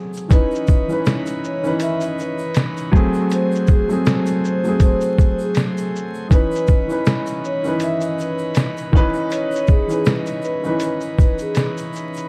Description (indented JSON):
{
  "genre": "lo-fi hip hop",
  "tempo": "80 BPM",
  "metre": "4/4",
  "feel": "swing 56% on 16ths",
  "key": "C# minor",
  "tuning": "A4 = 440 Hz",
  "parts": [
    { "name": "warm upright piano", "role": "accompaniment", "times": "0.0-12.3 s", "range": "D#3 to B4", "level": "-24 LUFS", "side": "equal", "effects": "cassette tape" },
    { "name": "egg shaker", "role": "percussion", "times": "0.1-12.3 s", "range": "none", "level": "-49 LUFS", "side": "equal", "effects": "none" },
    { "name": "lo-fi sampler-style drum kit", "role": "drums", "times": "0.2-12.3 s", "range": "hi-hat, kick drum, shaker, snare drum", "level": "-18 LUFS", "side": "equal", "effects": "vintage 12-bit sampler grit" },
    { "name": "vibraphone with soft mallets", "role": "melody", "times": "0.3-11.6 s", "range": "G#4 to E5", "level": "-28 LUFS", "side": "equal", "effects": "none" },
    { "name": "chamber organ, principal chorus", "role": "sustained chords", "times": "0.3-12.3 s", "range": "E3 to B#4", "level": "-31 LUFS", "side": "equal", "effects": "none" }
  ],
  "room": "light reverb, small room ambience",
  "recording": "dark, warm production, vinyl crackle",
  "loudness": "-19 LUFS",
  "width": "mono",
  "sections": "0.0-12.3 A section",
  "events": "break 0.0-0.3",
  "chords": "0.3 C#m9; 2.9 G#7b9; 6.3 C#m9"
}